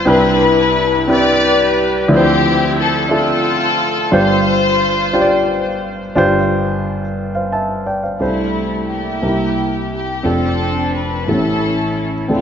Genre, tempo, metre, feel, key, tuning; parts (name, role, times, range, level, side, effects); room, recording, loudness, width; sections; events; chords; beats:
gospel; 59 BPM (dotted quarters); 6/8; straight; C major; A4 = 435 Hz
warm studio string section; melody; 0.0-12.4 s; G3 to D5; -16 LUFS; left 2 dB; tape echo
warm concert grand piano; accompaniment; 0.0-12.4 s; F1 to A5; -15 LUFS; equal
wet concert hall reverb, RT60 2.0 s; nothing above 7.5 kHz; -13 LUFS; side -8 dB against mid
0.0-6.2 A section; 6.2-8.2 B section; 8.2-12.4 C section
0.1 Cmaj9; 2.1 Dm9; 4.1 G7sus4; 8.2 C69; 9.2 C7; 10.3 F6; 11.3 A7
| 0.06 1.08 | 2.09 3.11 | 4.12 5.14 | 6.16 7.18 | 8.21 9.23 | 10.25 11.28 | 12.30